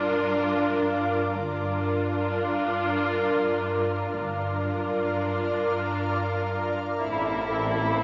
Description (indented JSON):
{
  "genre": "cinematic, suspense film score",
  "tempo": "free time",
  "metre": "none",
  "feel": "none",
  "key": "G minor",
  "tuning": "A4 = 439 Hz",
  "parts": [
    { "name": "dark studio violin section", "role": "melody", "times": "0.0-8.0 s", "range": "A4 to Bb4", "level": "-33 LUFS", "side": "equal", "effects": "none" },
    { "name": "rich studio viola section", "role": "accompaniment", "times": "0.0-8.0 s", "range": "C4 to F4", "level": "-30 LUFS", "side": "equal", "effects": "none" },
    { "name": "shimmering ambient pad", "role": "sustained chords", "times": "0.0-8.0 s", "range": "Bb4 to F5", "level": "-33 LUFS", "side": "equal", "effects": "chorus, built-in reverb" },
    { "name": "rich studio cello section", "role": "bass", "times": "0.0-8.0 s", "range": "G2 to A2", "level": "-36 LUFS", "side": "equal", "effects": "none" },
    { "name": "rich studio double bass section", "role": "bass", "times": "1.3-8.0 s", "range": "G1 to A1", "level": "-38 LUFS", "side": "equal", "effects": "none" },
    { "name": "warm studio violin section", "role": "second line", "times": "7.0-8.0 s", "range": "E4", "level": "-29 LUFS", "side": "equal", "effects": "none" }
  ],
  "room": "wet scoring stage reverb, RT60 1.6 s",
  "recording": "nothing above 7.7 kHz",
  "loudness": "-26 LUFS",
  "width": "mono",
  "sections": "0.0-7.0 A section; 7.0-8.0 B section",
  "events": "none",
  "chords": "0.0 Gm7; 7.0 Am",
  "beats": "free time"
}